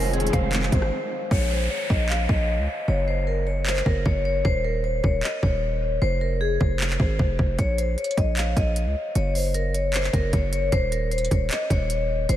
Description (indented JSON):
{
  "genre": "hip hop, trap",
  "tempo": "153 BPM",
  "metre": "4/4",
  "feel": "half-time",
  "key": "Bb minor",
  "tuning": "A4 = 440 Hz",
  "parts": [
    { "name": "vibraphone with medium mallets", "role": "melody", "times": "0.0-12.4 s", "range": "Ab4 to F5", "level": "-26 LUFS", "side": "left 2 dB", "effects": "tape echo" },
    { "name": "mallet-like synth pluck", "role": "second line", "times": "0.0-0.9 s", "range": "F5 to Ab5", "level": "-38 LUFS", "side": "right 1 dB", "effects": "chorus, tape echo" },
    { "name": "warm studio string section", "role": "sustained chords", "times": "0.0-1.3 s", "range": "Eb3 to C4", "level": "-31 LUFS", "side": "right 1 dB", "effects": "none" },
    { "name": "hard-hitting 808-style bass", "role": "bass", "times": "0.0-12.4 s", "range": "Eb1 to Db2", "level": "-24 LUFS", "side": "equal", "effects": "none" },
    { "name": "trap drum kit", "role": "drums", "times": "0.1-12.4 s", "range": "handclaps, hi-hat, kick drum, rim click", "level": "-26 LUFS", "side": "equal", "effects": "overdrive" },
    { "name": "downlifter", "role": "sound effects", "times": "1.3-4.4 s", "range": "none", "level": "-34 LUFS", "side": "equal", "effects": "none" }
  ],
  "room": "moderate cathedral reverb, RT60 6.0 s",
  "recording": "dreamy mix soaked in reverb",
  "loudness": "-21 LUFS",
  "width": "side -12 dB against mid",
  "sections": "0.0-1.3 A section; 1.3-12.4 B section",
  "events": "break 0.9-1.3; hi-hats muted 1.3-7.6",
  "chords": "0.0 Fm7; 1.3 Bbm; 2.9 Gb; 4.4 Bbmadd11/Eb (rootless); 6.0 Fm; 7.6 Bbm; 9.2 Gb; 10.7 Bbmadd11/Eb (rootless)"
}